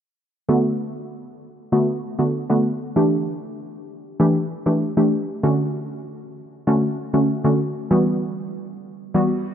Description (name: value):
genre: dancehall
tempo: 97 BPM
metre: 4/4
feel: straight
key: B minor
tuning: A4 = 441 Hz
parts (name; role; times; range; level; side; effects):
- hollow square pluck; accompaniment; 0.5-9.3 s; D3 to G4; -19 LUFS; equal; chorus
room: moderate lush hall reverb, RT60 2.9 s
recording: low-pass filter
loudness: -18 LUFS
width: side -9 dB against mid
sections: 0.5-9.5 A section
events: filter sweep 0.5-9.5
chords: 0.5 Bm7; 3.0 A7sus4; 5.4 Dmaj7; 7.9 Emadd9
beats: | 0.49 1.11 1.73 2.34 | 2.96 3.58 4.20 4.82 | 5.44 6.05 6.67 7.29 | 7.91 8.53 9.15